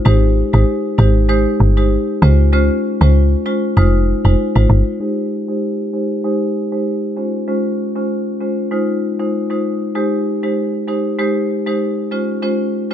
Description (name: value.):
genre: afrobeats.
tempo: 97 BPM.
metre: 4/4.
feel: swing 55% on 16ths.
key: Ab major.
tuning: A4 = 444 Hz.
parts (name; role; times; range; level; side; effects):
marimba with medium mallets; accompaniment; 0.1-12.9 s; Ab3 to C5; -17 LUFS; equal; low-pass filter.
woody log drum bass; bass; 0.1-4.8 s; F1 to Db2; -12 LUFS; equal; none.
room: small room ambience.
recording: none.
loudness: -14 LUFS.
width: side -10 dB against mid.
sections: 0.0-5.0 A section; 5.0-12.9 B section.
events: filter sweep on marimba 5.0-12.9.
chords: 0.1 Abmaj7; 2.2 Dbmaj7; 3.8 Fm7; 5.0 Abmaj7; 7.2 Dbmaj7; 8.7 Fm7; 10.0 Abmaj7; 12.1 Dbmaj7.